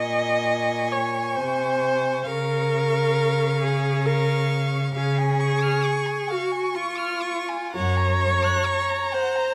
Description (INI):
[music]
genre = classical, slow romantic movement for string quartet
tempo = 66 BPM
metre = 3/4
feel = rubato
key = unclear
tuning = A4 = 439 Hz
[part]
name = rich violin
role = melody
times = 0.0-9.5 s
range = Bb5 to Db6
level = -35 LUFS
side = equal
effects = none
[part]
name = warm violin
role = second line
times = 0.0-9.5 s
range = F5 to Gb6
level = -33 LUFS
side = equal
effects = none
[part]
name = warm viola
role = accompaniment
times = 0.0-9.5 s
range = F4 to Eb5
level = -26 LUFS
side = equal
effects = none
[part]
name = rich cello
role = bass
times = 0.0-8.5 s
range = Gb2 to Db3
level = -27 LUFS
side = equal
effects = none
[sound]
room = light reverb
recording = close, detailed microphones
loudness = -23 LUFS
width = mono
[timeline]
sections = 0.0-9.5 A section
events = none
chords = 0.0 Bbm7; 2.3 Bbm/Db; 5.0 Db; 7.8 Gb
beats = 0.46 1.37 | 2.27 3.16 4.06 | 4.96 5.86 6.76 | 7.75 8.68